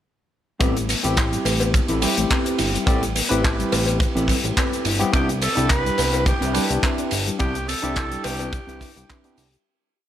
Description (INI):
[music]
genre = nu-disco, nu disco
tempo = 106 BPM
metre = 4/4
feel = swing 53% on 16ths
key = A minor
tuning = A4 = 440 Hz
[part]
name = overdriven tine electric piano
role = accompaniment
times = 0.6-9.5 s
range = B3 to B4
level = -27 LUFS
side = equal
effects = auto-pan, sidechain pumping, slapback echo
[part]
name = soft round pluck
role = arpeggios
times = 0.6-9.6 s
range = G3 to G4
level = -30 LUFS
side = left 4 dB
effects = chorus, sidechain pumping, tape echo
[part]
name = mellow electric guitar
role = riff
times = 0.6-9.4 s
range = C4 to D5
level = -28 LUFS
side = equal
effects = wide subtle chorus, slapback echo
[part]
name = fat analog bass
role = bass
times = 0.6-9.6 s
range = G1 to C2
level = -25 LUFS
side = equal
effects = none
[part]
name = kick drum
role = drums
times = 0.6-9.2 s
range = none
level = -22 LUFS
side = equal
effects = none
[part]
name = tight funk drum kit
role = drums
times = 0.6-9.6 s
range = handclaps, hi-hat, ride cymbal, shaker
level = -25 LUFS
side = left 1 dB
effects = none
[part]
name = cowbell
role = percussion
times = 1.5-8.5 s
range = none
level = -28 LUFS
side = left 2 dB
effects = none
[part]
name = growling tenor saxophone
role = melody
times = 5.1-9.4 s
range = G4 to B4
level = -27 LUFS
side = right 2 dB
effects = tape echo
[sound]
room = light reverb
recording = none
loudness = -18 LUFS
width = side -11 dB against mid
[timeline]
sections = 0.6-9.7 drop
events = drop 0.6-9.7; fade-out 6.6-9.7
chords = 0.6 Am9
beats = | 0.61 1.17 1.74 2.31 | 2.87 3.44 4.00 4.57 | 5.14 5.70 6.27 6.83 | 7.40 7.97 8.53 9.10